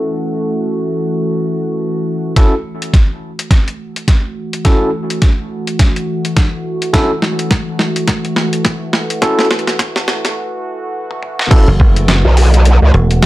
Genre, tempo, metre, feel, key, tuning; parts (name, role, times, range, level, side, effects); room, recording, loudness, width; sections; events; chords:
glitch hop; 105 BPM; 4/4; swing 59% on 16ths; F# minor; A4 = 439 Hz
warm analog pad; sustained chords; 0.0-13.3 s; E3 to F#4; -20 LUFS; equal; chorus, sidechain pumping
overdriven tine electric piano; stabs; 0.0-11.7 s; C#4 to A4; -18 LUFS; equal; sidechain pumping, digital delay
boom bap sampler-style drum kit; drums; 2.4-13.3 s; crash cymbal, hi-hat, rim click, snare drum, toms; -17 LUFS; equal; low-pass filter on snare, low-pass filter on hats, low-pass filter on toms, low-pass filter on cymbals
electronic kick drum; drums; 2.4-11.9 s; -10 LUFS; equal
growl bass; bass; 11.5-12.9 s; F#1 to C#2; -8 LUFS; equal; chorus
dry thumbed slap bass; bass; 11.7-13.3 s; E1 to F#1; -11 LUFS; equal
moderate studio reverb, RT60 0.6 s; dark, warm production, high-pass filter; -12 LUFS; side -16 dB against mid
0.0-2.4 A section; 2.4-11.5 B section; 11.5-13.3 C section
filter sweep on tine electric piano 0.0-2.4; filter sweep on analog synth pad 0.0-2.4, 2.4-11.5; build-up 2.4-11.5; drum fill 2.4-10.4, 11.1-11.5; filter sweep 2.4-11.5; break 10.4-11.5; drop 11.5-13.3
0.0 F#m7